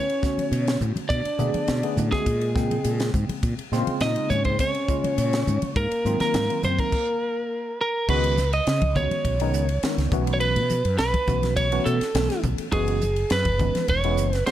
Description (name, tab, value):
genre	electric jazz fusion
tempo	103 BPM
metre	4/4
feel	straight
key	C# minor from 8.1 s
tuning	A4 = 441 Hz
part	lightly driven lead guitar	melody	0.0-14.5 s	Ab4 to Eb5	-25 LUFS	right 2 dB	none
part	mellow trombone	second line	0.0-7.8 s	Ab3 to Eb4	-30 LUFS	left 4 dB	none
part	tine electric piano	accompaniment	0.0-14.5 s	Db3 to G5	-29 LUFS	equal	medium stereo tremolo, wide subtle chorus
part	crisp fusion drum kit	drums	0.1-14.5 s	crash cymbal, hi-hat, kick drum, ride cymbal, snare drum	-29 LUFS	equal	none
part	congas	percussion	0.4-13.9 s	none	-31 LUFS	left 1 dB	none
part	mellow fretless electric bass	bass	0.5-14.5 s	E1 to C#3	-25 LUFS	equal	none
room	light reverb, small room ambience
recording	dark, warm production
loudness	-21 LUFS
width	side -12 dB against mid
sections	0.0-8.1 A section; 8.1-14.5 B section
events	stop 6.9-8.1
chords	0.0 Bm9; 2.3 Bbm9; 5.8 Ab13; 8.1 C#9sus4; 10.1 B9sus4; 12.7 F#9sus4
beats	0.52 | 1.10 1.69 2.27 2.85 | 3.43 4.02 4.60 5.18 | 5.76 6.34 6.93 7.51 | 8.09 8.67 9.25 9.83 | 10.41 10.99 11.57 12.15 | 12.73 13.31 13.89 14.47